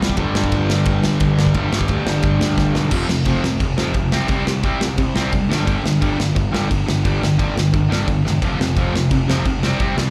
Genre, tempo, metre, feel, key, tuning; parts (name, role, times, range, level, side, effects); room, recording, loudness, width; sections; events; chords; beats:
punk rock; 175 BPM; 4/4; straight; A4 = 443 Hz
distorted electric guitar; riff; 0.0-10.1 s; F2 to C4; -22 LUFS; equal; distortion, slapback echo
fuzz picked electric bass; bass; 0.0-10.1 s; E1 to E2; -24 LUFS; equal; overdrive
big rock drum kit; drums; 0.0-10.1 s; crash cymbal, kick drum, ride cymbal, snare drum; -23 LUFS; equal
light reverb; live gig heard through the venue's PA, club reverb; -18 LUFS; mono
0.0-2.9 A section; 2.9-10.1 B section
drum fill 2.6-2.9, 8.2
0.2 G5; 2.9 F5; 4.1 C5; 5.5 G5; 8.4 F5
| 0.18 0.52 0.87 1.21 | 1.55 1.89 2.24 2.58 | 2.92 3.27 3.61 3.95 | 4.29 4.64 4.98 5.33 | 5.67 6.01 6.36 6.70 | 7.04 7.38 7.73 8.07 | 8.42 8.76 9.11 9.45 | 9.79